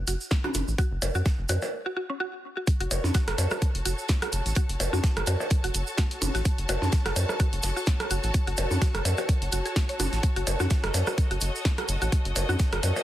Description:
minimal techno; 127 BPM; 4/4; swing 55% on 16ths; F# dorian; A4 = 440 Hz
rubbery square bass; bass; 0.0-12.9 s; F#1 to F#2; -28 LUFS; equal; tube saturation, sidechain pumping
mallet-like synth pluck; riff; 0.1-12.7 s; C#4 to C#5; -34 LUFS; equal; analog chorus, sidechain pumping, digital delay
modern studio drum kit; drums; 0.1-13.0 s; hi-hat, snare drum; -42 LUFS; right 3 dB
punchy analog drum machine; drums; 0.1-12.9 s; hi-hat, snare drum; -33 LUFS; left 1 dB
tube shaker; percussion; 0.1-13.0 s; -36 LUFS; right 3 dB
electronic kick drum; drums; 0.3-12.7 s; -24 LUFS; equal
electronic percussion blips and rim click; percussion; 0.4-13.0 s; -31 LUFS; right 1 dB
clear studio string section; texture; 2.7-13.0 s; F#4 to A5; -35 LUFS; left 1 dB; sidechain pumping
small room ambience; dense, heavily limited modern master; -24 LUFS; side -13 dB against mid
0.0-2.7 A section; 2.7-13.0 B section
break 1.7-2.7; drop 2.7-13.0
0.0 N.C.; 2.7 F#m

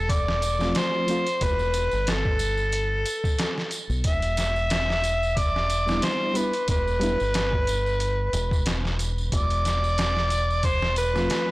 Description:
trip hop; 91 BPM; 4/4; swing 55% on 16ths; A4 = 442 Hz
overdriven harmonica; melody; 0.0-11.5 s; A4 to E5; -25 LUFS; equal; vintage 12-bit sampler grit, tape echo
deep dub fingered electric bass; bass; 0.0-11.3 s; E1 to B1; -27 LUFS; equal
trip hop sampler-style drum kit; drums; 0.1-11.5 s; hi-hat, kick drum, snare drum; -28 LUFS; equal
tambourine; percussion; 0.1-11.4 s; -38 LUFS; right 1 dB
reed electric piano; accompaniment; 0.6-1.3, 5.9-11.5 s; F3 to F4; -29 LUFS; equal; overdrive, tremolo, vintage 12-bit sampler grit
little or no reverb; blown-out, overdriven recording, overdrive; -22 LUFS; side -19 dB against mid
0.0-11.5 A section
0.0 F/E; 4.0 Em7; 9.3 F/E

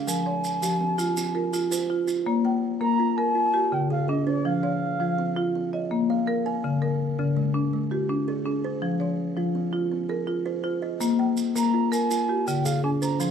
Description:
southern african traditional, mbira-style interlocking cycle; 110 BPM (dotted quarters); 12/8; straight; Bb equiheptatonic; A4 = 441 Hz
mellow baroque flute; melody; 0.0-5.9, 11.6-13.3 s; Db5+35c to C6-33c; -27 LUFS; right 2 dB
buzzing kalimba; arpeggios; 0.0-13.3 s; Db3+43c to Ab5+29c; -30 LUFS; right 8 dB
marimba with medium hard mallets; arpeggios; 0.0-13.3 s; Db3+43c to G5-43c; -25 LUFS; left 3 dB
maracas; percussion; 0.1-2.2, 11.0-13.3 s; -34 LUFS; right 5 dB
light reverb, studio ambience; rough home demo mix, lossy compression artefacts; -23 LUFS; side -7 dB against mid
0.0-2.3 A section; 2.3-13.3 B section
0.1 Fm; 2.3 Bbm; 3.4 Db; 4.4 Fm; 5.5 Bbm; 6.6 Db; 8.8 Fm; 11.0 Bb5; 12.1 Db

